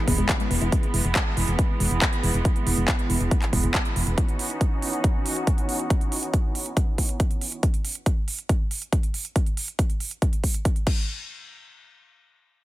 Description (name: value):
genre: uplifting trance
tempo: 139 BPM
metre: 4/4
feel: straight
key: E major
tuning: A4 = 440 Hz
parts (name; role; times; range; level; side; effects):
- rich studio string section; sustained chords; 0.0-7.6 s; E3 to F#4; -29 LUFS; right 2 dB; sidechain pumping, low-pass filter
- wide unison pluck; arpeggios; 0.0-0.7 s; E3 to E4; -31 LUFS; left 5 dB; sidechain pumping, digital delay
- downlifter; sound effects; 0.0-0.7 s; none; -40 LUFS; right 1 dB; none
- solid FM bass; bass; 0.1-4.2 s; E1; -24 LUFS; equal; sidechain pumping
- big-room dance drum kit; drums; 0.1-11.0 s; crash cymbal, handclaps, hi-hat; -28 LUFS; right 1 dB; small room ambience, sidechain pumping on hats, sidechain pumping on cymbals
- electronic kick drum; drums; 0.1-11.0 s; none; -23 LUFS; equal; small room ambience
room: little or no reverb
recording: none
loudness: -22 LUFS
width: side -16 dB against mid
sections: 0.0-11.1 A section; 11.1-12.6 B section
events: filter sweep on string section 0.0-7.6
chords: 0.0 E; 4.2 Badd9/E; 7.6 N.C.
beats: 0.29 | 0.72 1.16 1.59 2.02 | 2.45 2.88 3.31 3.75 | 4.18 4.61 5.04 5.47 | 5.90 6.33 6.77 7.20 | 7.63 8.06 8.49 8.93 | 9.36 9.79 10.22 10.65